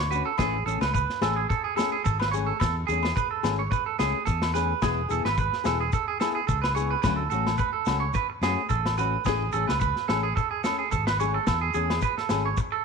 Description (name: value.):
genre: highlife guitar band.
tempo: 108 BPM.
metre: 4/4.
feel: swing 54% on 16ths.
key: A major.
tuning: A4 = 440 Hz.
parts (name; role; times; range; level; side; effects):
clean electric guitar; arpeggios; 0.0-12.8 s; G#4 to C#5; -27 LUFS; right 12 dB; slapback echo.
fingered electric bass; bass; 0.0-12.5 s; E1 to F#2; -29 LUFS; equal; none.
shekere; percussion; 0.0-12.7 s; none; -32 LUFS; left 6 dB; none.
nylon-string guitar; accompaniment; 0.1-12.5 s; E3 to G#4; -32 LUFS; left 13 dB; none.
vintage drum kit; drums; 0.4-12.7 s; kick drum, snare drum; -31 LUFS; equal; none.
agogo bells; percussion; 0.4-12.5 s; none; -34 LUFS; left 17 dB; none.
room: light reverb, studio reverb.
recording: 1960s-style stereo with parts hard left and right.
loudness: -23 LUFS.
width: side -5 dB against mid.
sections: 0.4-12.8 A section.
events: none.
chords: 0.4 Amaj7; 4.8 E; 7.0 Dmaj7 (rootless); 9.3 Amaj7.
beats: | 0.39 0.94 1.49 2.05 | 2.60 3.16 3.71 4.27 | 4.82 5.38 5.93 6.49 | 7.04 7.59 8.15 8.70 | 9.26 9.81 10.36 10.92 | 11.47 12.02 12.58.